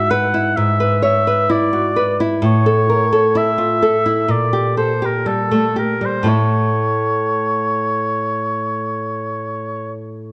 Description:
romantic duo for oboe and classical guitar; 57-65 BPM; 4/4; rubato; A4 = 441 Hz
clear oboe; melody; 0.0-9.9 s; A4 to F#5; -22 LUFS; equal
nylon-string guitar; accompaniment; 0.0-10.3 s; G#2 to C#5; -20 LUFS; equal
moderate recital hall reverb, RT60 1.4 s; dark, warm production; -17 LUFS; mono
0.0-10.3 A section
0.0 E/G#; 2.4 A; 4.3 Gm/Bb; 6.3 A

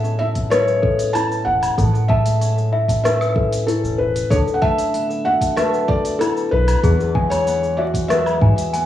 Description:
folktronica; 95 BPM; 4/4; straight; A major; A4 = 440 Hz
felt-muted upright piano; melody; 0.0-8.9 s; A4 to A5; -21 LUFS; equal; tape echo
small celesta; second line; 0.0-8.9 s; E4 to A5; -23 LUFS; left 4 dB; cassette tape, tape echo
concert harp; arpeggios; 0.0-8.9 s; E2 to F#4; -22 LUFS; equal; cassette tape
organic electronic drum kit; drums; 0.0-8.9 s; hi-hat, rim click, shaker, woodblock; -27 LUFS; equal
electronic kick drum; drums; 0.4-8.5 s; -22 LUFS; right 1 dB
warm sub bass; bass; 1.5-8.5 s; E1 to G#2; -18 LUFS; equal
moderate studio reverb, RT60 0.5 s; home recording on cassette, vinyl crackle, studio reverb; -16 LUFS; side -12 dB against mid
0.0-8.9 A section
0.0 Amaj7; 4.3 D6; 6.8 Eadd9

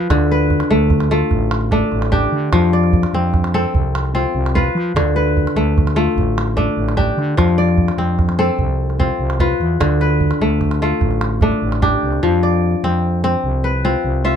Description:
west african traditional, West African string and xylophone music; 99 BPM (dotted quarters); 12/8; straight; F lydian; A4 = 440 Hz
kora; arpeggios; 0.0-14.4 s; D3 to E5; -17 LUFS; left 1 dB
growling FM bass; bass; 0.0-14.4 s; A1 to F3; -18 LUFS; equal
calabash; percussion; 0.1-12.2 s; -20 LUFS; right 2 dB
little or no reverb; close, detailed microphones; -14 LUFS; side -8 dB against mid
0.0-12.2 A section; 12.2-14.4 A section
0.1 Dm; 2.5 F; 5.0 Dm; 7.4 F; 9.8 Dm; 12.2 F5

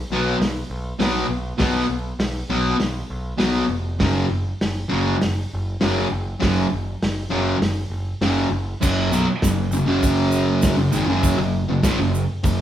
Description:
garage rock duo or trio; 100 BPM; 4/4; straight; A4 = 440 Hz
growling picked electric bass; bass; 0.0-12.6 s; E#1 to B1; -26 LUFS; equal; overdrive, tube saturation
fuzz guitar; riff; 0.1-12.6 s; F#2 to B3; -20 LUFS; equal; distortion
vintage drum kit; drums; 0.4-12.6 s; crash cymbal, hi-hat, kick drum, snare drum; -25 LUFS; equal
tube shaker; percussion; 8.8-12.6 s; -35 LUFS; right 6 dB
moderate large studio reverb, RT60 1.0 s; band playing live in one room; -19 LUFS; side -11 dB against mid
0.0-8.8 A section; 8.8-12.6 B section
0.0 B5; 4.0 F#5

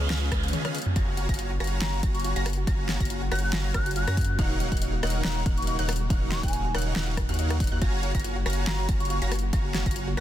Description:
future bass; 140 BPM; 4/4; swing 54% on 16ths, half-time; F# major; A4 = 445 Hz
airy breathy pad; sustained chords; 0.0-10.2 s; C#3 to F#4; -37 LUFS; left 2 dB; chorus, sidechain pumping
soft round pluck; arpeggios; 0.0-10.2 s; D#4 to E#5; -41 LUFS; right 4 dB; chorus, sidechain pumping, digital delay
wide unison pluck; arpeggios; 0.0-10.2 s; E#6 to A#6; -40 LUFS; equal; cassette tape, sidechain pumping
dense compressed supersaw; riff; 0.0-10.2 s; C#4 to A#5; -33 LUFS; right 1 dB; sidechain pumping, digital delay
saturated sub bass; bass; 0.0-10.2 s; D#1 to F#2; -29 LUFS; equal; sidechain pumping
noise sweep; sound effects; 0.0-1.0 s; -39 LUFS; right 4 dB
pop drum kit; drums; 0.1-10.2 s; hi-hat, rim click, snare drum, toms; -33 LUFS; left 1 dB; soft clipping on snare
electronic kick drum; drums; 0.3-9.9 s; -28 LUFS; equal
mellow hollow wooden flute; melody; 1.8-10.2 s; G#5 to F#6; -36 LUFS; left 1 dB; sidechain pumping, digital delay
digital ambience; dense, heavily limited modern master; -24 LUFS; side -12 dB against mid
0.0-10.2 A section
noise sweep 0.0-1.0; drum fill 0.5-1.0
0.0 C#7; 1.0 F#maj7; 4.4 D#m7; 7.8 F#maj7

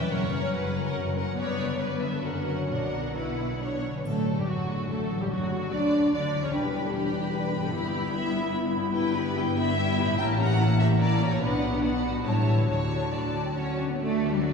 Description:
classical, dramatic, fast romantic movement for symphony orchestra; 129-151 BPM; 3/4; rubato; B minor, D major from 4.1 s; A4 = 440 Hz
warm symphonic violin section; melody; 0.0-14.5 s; F#4 to B5; -38 LUFS; left 2 dB
rich symphonic violin section; second line; 0.0-14.5 s; F#4 to G5; -34 LUFS; left 1 dB
rich symphonic viola section; accompaniment; 0.0-14.5 s; F#3 to B4; -32 LUFS; equal
concert harp; arpeggios; 0.0-14.5 s; E2 to E5; -33 LUFS; left 4 dB
rich studio double bass section; bass; 0.0-14.5 s; E1 to D2; -30 LUFS; right 1 dB
rich symphonic cello section; bass; 0.0-14.5 s; E2 to C#4; -33 LUFS; right 1 dB
concert flute; second line; 4.1-14.0 s; F#4 to B5; -36 LUFS; left 2 dB
warm clarinet; second line; 4.1-14.0 s; F#3 to G4; -36 LUFS; left 1 dB
mellow French horn section; sustained chords; 4.1-14.5 s; F#3 to A4; -32 LUFS; left 3 dB
timpani; percussion; 4.1-4.6 s; D3; -37 LUFS; equal
triangle; percussion; 4.1-4.9 s; -62 LUFS; left 3 dB
wet church reverb, RT60 3.1 s; -24 LUFS; side -5 dB against mid
0.0-4.1 A section; 4.1-14.0 B section
0.1 F#; 1.4 G; 2.2 F#; 2.7 Bm; 4.1 D; 5.3 D/F#; 6.5 Em7; 7.7 Em/G; 10.2 A7b9; 11.4 Bm; 12.3 A7; 12.7 D

